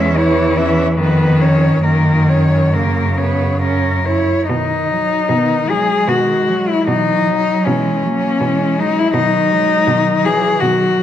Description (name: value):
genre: classical, lyrical piece for cello ensemble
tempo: 66-82 BPM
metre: 3/4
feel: rubato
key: B major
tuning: A4 = 440 Hz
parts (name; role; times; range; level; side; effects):
- rich cello; melody; 0.0-11.0 s; C#4 to E5; -16 LUFS; left 4 dB; none
- warm cello; second line; 0.0-11.0 s; D#3 to E4; -21 LUFS; right 6 dB; none
- dark cello; accompaniment; 0.0-11.0 s; C#3 to B3; -18 LUFS; left 1 dB; none
- clear cello; bass; 0.0-11.0 s; E2 to B2; -21 LUFS; right 2 dB; none
room: wet recital hall reverb, RT60 1.4 s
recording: worn, warbling old tape, cassette tape, warbly pitch drift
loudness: -12 LUFS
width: side -11 dB against mid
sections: 0.0-4.5 A section; 4.5-11.0 A section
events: none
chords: 0.0 C#m/E; 1.0 C#7/E#; 1.8 F#; 4.5 B; 6.9 F#5/B; 9.2 B